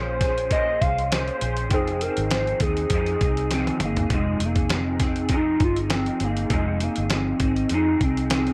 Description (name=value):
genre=indie pop, bedroom pop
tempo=100 BPM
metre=4/4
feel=swing 55% on 16ths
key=F minor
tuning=A4 = 440 Hz
part: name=warbly nostalgic lead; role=melody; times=0.0-8.5 s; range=Ab3 to F5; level=-27 LUFS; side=equal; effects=lush chorus, analog delay
part: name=electric guitar through a small old amp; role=accompaniment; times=0.0-8.5 s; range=F3 to C5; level=-32 LUFS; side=equal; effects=ensemble chorus, warbly pitch drift
part: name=mellow reed electric piano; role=accompaniment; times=0.0-4.1 s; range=Db4 to G5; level=-37 LUFS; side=equal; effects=fast tremolo
part: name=vintage muted fingered electric bass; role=bass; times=0.0-8.5 s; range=F1 to F2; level=-30 LUFS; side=equal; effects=none
part: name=dusty soul sampler-style drum kit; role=drums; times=0.2-8.5 s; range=hi-hat, kick drum, snare drum, toms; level=-28 LUFS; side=equal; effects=none
room=light reverb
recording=none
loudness=-23 LUFS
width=mono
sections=0.0-4.1 A section; 4.1-8.5 A section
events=drum fill 3.5-4.1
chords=0.0 Bbm9; 1.7 Fm7